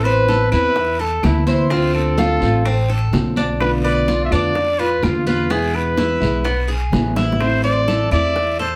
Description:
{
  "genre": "latin, Cuban son and guajira",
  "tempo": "126 BPM",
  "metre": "4/4",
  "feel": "straight",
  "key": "A harmonic minor",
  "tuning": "A4 = 440 Hz",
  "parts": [
    { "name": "warm trumpet", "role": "melody", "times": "0.0-8.8 s", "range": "E4 to E5", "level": "-22 LUFS", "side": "equal", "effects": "none" },
    { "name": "nylon-string guitar", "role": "accompaniment", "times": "0.0-8.4 s", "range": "B2 to F4", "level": "-25 LUFS", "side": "equal", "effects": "none" },
    { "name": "upright bass", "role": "bass", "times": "0.0-8.8 s", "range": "A1 to F2", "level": "-23 LUFS", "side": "equal", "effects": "none" },
    { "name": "bongos", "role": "percussion", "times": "0.0-8.8 s", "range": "none", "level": "-29 LUFS", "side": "equal", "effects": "none" },
    { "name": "Cuban tres", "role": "arpeggios", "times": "0.1-8.8 s", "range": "B3 to C5", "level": "-26 LUFS", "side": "equal", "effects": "none" },
    { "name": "congas", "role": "percussion", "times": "0.1-8.8 s", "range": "none", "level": "-28 LUFS", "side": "equal", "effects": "none" },
    { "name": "guiro", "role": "percussion", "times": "0.3-8.8 s", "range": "none", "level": "-37 LUFS", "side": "equal", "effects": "none" },
    { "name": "claves", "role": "percussion", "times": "0.5-8.4 s", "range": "none", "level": "-36 LUFS", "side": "equal", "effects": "none" }
  ],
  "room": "wet studio reverb, RT60 0.5 s",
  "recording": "heard from further back in the room",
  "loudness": "-18 LUFS",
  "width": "mono",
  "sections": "0.0-8.8 A section",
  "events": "drum fill 7.2",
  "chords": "0.0 Amadd9; 1.7 Dm7; 3.6 Bm7b5; 5.5 E; 7.4 Am"
}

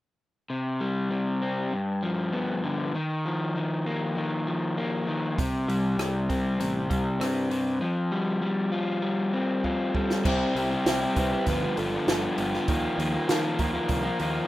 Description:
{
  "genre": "indie rock",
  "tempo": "99 BPM",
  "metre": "4/4",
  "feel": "straight",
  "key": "unclear",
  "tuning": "A4 = 440 Hz",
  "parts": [
    { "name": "crunchy overdriven guitar", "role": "riff", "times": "0.5-14.5 s", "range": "G2 to G4", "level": "-26 LUFS", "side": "left 1 dB", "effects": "none" },
    { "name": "picked electric bass", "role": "bass", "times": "5.4-14.4 s", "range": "G1 to Eb3", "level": "-33 LUFS", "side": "right 1 dB", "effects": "none" },
    { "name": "compact cocktail drum kit", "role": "drums", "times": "5.4-14.3 s", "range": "crash cymbal, hi-hat, kick drum, rim click, snare drum", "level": "-30 LUFS", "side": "right 1 dB", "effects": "none" },
    { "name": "overdriven synth lead", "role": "melody", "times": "9.9-14.5 s", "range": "G4 to C5", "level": "-34 LUFS", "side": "right 4 dB", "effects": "distortion, phaser" }
  ],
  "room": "moderate studio reverb, RT60 0.6 s",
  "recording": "rough home demo mix",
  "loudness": "-25 LUFS",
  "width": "side -16 dB against mid",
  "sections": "0.5-10.2 A section; 10.2-14.5 B section",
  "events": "drum fill 9.6-10.2",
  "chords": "0.5 C5; 1.7 G7; 2.9 Ebsus2; 5.4 C5; 7.8 Fsus2; 10.2 C; 11.5 G7; 12.7 Ebsus2"
}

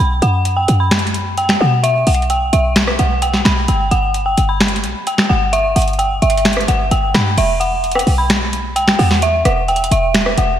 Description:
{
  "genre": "hip hop, trap",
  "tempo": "130 BPM",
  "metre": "4/4",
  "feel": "half-time",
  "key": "unclear",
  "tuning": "A4 = 440 Hz",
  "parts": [
    { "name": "dark detuned synth bell", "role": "melody", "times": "0.0-10.6 s", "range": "E5 to B5", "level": "-17 LUFS", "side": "equal", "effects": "chorus, diffuse ambient delay" },
    { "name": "short 808-style bass", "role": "bass", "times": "0.0-10.6 s", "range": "E1 to B2", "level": "-17 LUFS", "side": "equal", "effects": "none" },
    { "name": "booming analog drum machine", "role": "drums", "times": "0.2-10.5 s", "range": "crash cymbal, finger snaps, hi-hat, rim click, snare drum", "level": "-17 LUFS", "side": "equal", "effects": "none" }
  ],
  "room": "moderate lush hall reverb, RT60 1.6 s",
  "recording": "dreamy mix soaked in reverb",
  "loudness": "-12 LUFS",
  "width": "side -10 dB against mid",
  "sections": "0.0-7.4 A section; 7.4-10.6 B section",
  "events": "none",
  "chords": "0.0 B5; 3.7 N.C.; 7.4 E5"
}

